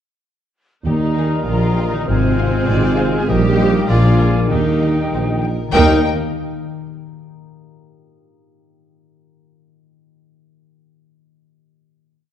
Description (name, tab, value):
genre	cinematic, playful, whimsical film cue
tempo	99 BPM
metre	2/4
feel	straight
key	Eb major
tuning	A4 = 439 Hz
part	mellow clarinet	second line	0.9-6.0 s	Bb4 to C5	-28 LUFS	left 4 dB	none
part	rich chamber violin section	second line	0.9-6.1 s	G4 to Eb5	-30 LUFS	left 3 dB	none
part	small flute group	second line	0.9-6.1 s	G5 to Bb5	-28 LUFS	left 2 dB	none
part	warm oboe	second line	0.9-6.0 s	D5 to F5	-29 LUFS	right 1 dB	none
part	mellow bassoon	accompaniment	0.9-6.0 s	G3 to Bb3	-27 LUFS	equal	none
part	rich studio viola section	accompaniment	0.9-6.1 s	C4 to Ab4	-24 LUFS	right 1 dB	none
part	dark French horn section	sustained chords	0.9-6.0 s	G3 to G4	-27 LUFS	left 5 dB	none
part	concert harp	arpeggios	0.9-7.0 s	Ab2 to Eb5	-24 LUFS	left 6 dB	none
part	mellow tuba	bass	0.9-6.0 s	Ab1 to Eb2	-20 LUFS	right 2 dB	none
part	rich studio double bass section	bass	0.9-6.1 s	Ab1 to Eb2	-20 LUFS	right 2 dB	none
part	warm studio cello section	bass	0.9-6.1 s	C3 to G3	-22 LUFS	right 2 dB	none
part	rich studio violin section	melody	1.2-6.1 s	Eb5 to Ab5	-25 LUFS	left 5 dB	none
room	wet scoring stage reverb, RT60 1.7 s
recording	dark, warm production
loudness	-14 LUFS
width	side -10 dB against mid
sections	0.9-5.7 A section; 5.7-7.0 final chord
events	none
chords	0.9 Eb; 2.1 Fm/Ab; 3.3 Eb/Bb; 3.9 Bb7; 4.5 Eb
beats	| 0.86 1.47 | 2.08 2.67 | 3.29 3.89 | 4.50 5.12 | 5.74 6.35